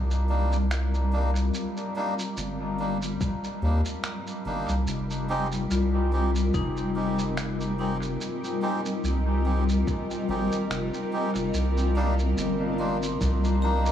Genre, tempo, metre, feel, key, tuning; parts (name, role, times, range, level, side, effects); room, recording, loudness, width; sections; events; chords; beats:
ambient dub; 72 BPM; 4/4; swing 55% on 16ths; A4 = 440 Hz
granular cloud pad; sustained chords; 0.0-13.9 s; G3 to Eb5; -29 LUFS; left 2 dB; built-in reverb, vintage 12-bit sampler grit
round analog bass; bass; 0.0-13.9 s; F1 to Eb2; -26 LUFS; equal
electronic shaker and finger snaps; drums; 0.1-13.9 s; -38 LUFS; right 2 dB; studio reverb, dub echo
melodica; stabs; 0.3-13.9 s; G3 to G4; -32 LUFS; right 1 dB; dub echo
electronic kick drum; drums; 3.2-13.4 s; -30 LUFS; equal; studio reverb
vibraphone with hard mallets; arpeggios; 5.7-13.9 s; Eb4 to C6; -35 LUFS; left 5 dB; tape echo
moderate echo chamber reverb, RT60 1.9 s, digital ambience; small room ambience; -24 LUFS; side -10 dB against mid
0.0-13.9 A section
0.0 Cm7; 4.9 Fm7; 11.5 Cm7
0.71 | 1.54 2.37 3.21 4.04 | 4.87 5.71 6.54 7.37 | 8.21 9.04 9.87 10.71 | 11.54 12.37 13.21